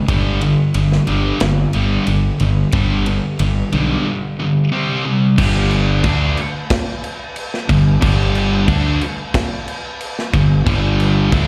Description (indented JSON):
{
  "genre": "hard rock",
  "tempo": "91 BPM",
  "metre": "4/4",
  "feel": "straight",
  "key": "unclear",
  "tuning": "A4 = 440 Hz",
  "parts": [
    { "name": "scooped high-gain guitar", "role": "riff", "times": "0.0-11.5 s", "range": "G2 to D4", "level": "-21 LUFS", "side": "equal", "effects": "distortion, slapback echo" },
    { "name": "sludgy distorted guitar", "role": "riff", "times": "0.0-11.5 s", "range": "G2 to D4", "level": "-24 LUFS", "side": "equal", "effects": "overdrive" },
    { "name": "fuzz fingered electric bass", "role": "bass", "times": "0.1-11.5 s", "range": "G1 to D2", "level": "-20 LUFS", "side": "equal", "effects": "overdrive" },
    { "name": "tight metal drum kit", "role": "drums", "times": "0.1-11.5 s", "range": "crash cymbal, kick drum, ride cymbal, snare drum", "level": "-24 LUFS", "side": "equal", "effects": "none" }
  ],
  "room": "light reverb",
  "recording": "live gig heard through the venue's PA, recital hall reverb",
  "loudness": "-17 LUFS",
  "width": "mono",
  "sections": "0.0-5.4 A section; 5.4-11.5 B section",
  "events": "none",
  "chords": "0.1 G5; 4.7 C5; 5.4 G5"
}